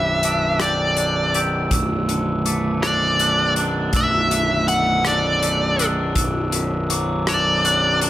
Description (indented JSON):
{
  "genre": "post-rock",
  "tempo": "54 BPM (dotted quarters)",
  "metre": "6/8",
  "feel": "straight",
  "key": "unclear",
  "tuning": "A4 = 440 Hz",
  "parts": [
    { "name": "nasal lead guitar with a parked wah", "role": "melody", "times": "0.0-8.0 s", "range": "D5 to F#5", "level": "-19 LUFS", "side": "equal", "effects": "overdrive, slapback echo" },
    { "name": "glockenspiel with soft plastic mallets", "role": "arpeggios", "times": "0.0-8.1 s", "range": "D6 to F#6", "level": "-28 LUFS", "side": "right 2 dB", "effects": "slapback echo" },
    { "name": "twangy electric guitar", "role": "arpeggios", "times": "0.0-8.1 s", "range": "B1 to G4", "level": "-26 LUFS", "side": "equal", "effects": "spring reverb, slapback echo" },
    { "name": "fuzz picked electric bass", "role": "bass", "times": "0.0-8.1 s", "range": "B0", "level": "-23 LUFS", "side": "equal", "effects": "overdrive" },
    { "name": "loose indie drum kit", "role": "drums", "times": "0.2-8.1 s", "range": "hi-hat, kick drum, rim click", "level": "-24 LUFS", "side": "left 1 dB", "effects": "none" }
  ],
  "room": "light reverb, small room ambience",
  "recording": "none",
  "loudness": "-17 LUFS",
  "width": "side -13 dB against mid",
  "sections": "0.0-8.1 A section",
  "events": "none",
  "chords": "0.0 G/B; 1.7 Dadd9/B; 6.2 Bm"
}